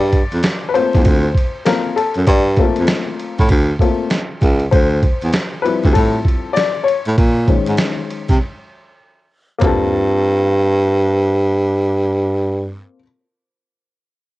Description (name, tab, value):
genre	hip hop, jazz-hop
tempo	98 BPM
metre	4/4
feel	swing 63% on 16ths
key	G dorian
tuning	A4 = 439 Hz
part	warm upright piano	accompaniment	0.0-13.0 s	Eb3 to D5	-19 LUFS	left 5 dB	cassette tape
part	warm baritone saxophone	bass	0.0-12.8 s	C#2 to C3	-15 LUFS	right 1 dB	none
part	boom bap sampler-style drum kit	drums	0.1-9.8 s	handclaps, hi-hat, kick drum, ride cymbal, snare drum, toms	-17 LUFS	right 1 dB	none
room	small room ambience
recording	home recording on cassette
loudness	-13 LUFS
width	side -17 dB against mid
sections	0.0-9.6 A section; 9.6-12.1 B section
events	upright piano solo 0.0-9.6; break 8.4-9.6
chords	0.0 Gm11; 4.7 Dm11; 7.2 Bbm11; 9.6 Gm11